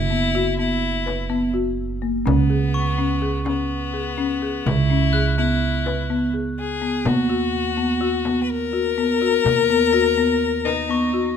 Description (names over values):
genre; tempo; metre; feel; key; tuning
contemporary instrumental, chamber music in an uneven meter; 125 BPM; 5/4; straight; C# dorian; A4 = 440 Hz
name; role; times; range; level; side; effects
clear violin; melody; 0.0-11.4 s; B3 to B4; -23 LUFS; left 9 dB; none
upright bass; bass; 0.0-11.4 s; F#1 to D#2; -24 LUFS; right 4 dB; none
folk marimba with medium hard mallets; arpeggios; 0.1-11.4 s; A#3 to B4; -23 LUFS; left 2 dB; none
frame drum; percussion; 0.3-10.9 s; none; -27 LUFS; left 4 dB; none
glockenspiel with hard plastic mallets; texture; 2.7-6.2, 9.9-11.4 s; C#6 to A#6; -32 LUFS; equal; none
room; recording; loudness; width
light reverb; close, detailed microphones; -18 LUFS; side -7 dB against mid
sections
0.0-11.4 A section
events
none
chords
0.0 F#7sus4; 2.3 C#m7; 7.1 Bmaj7/D#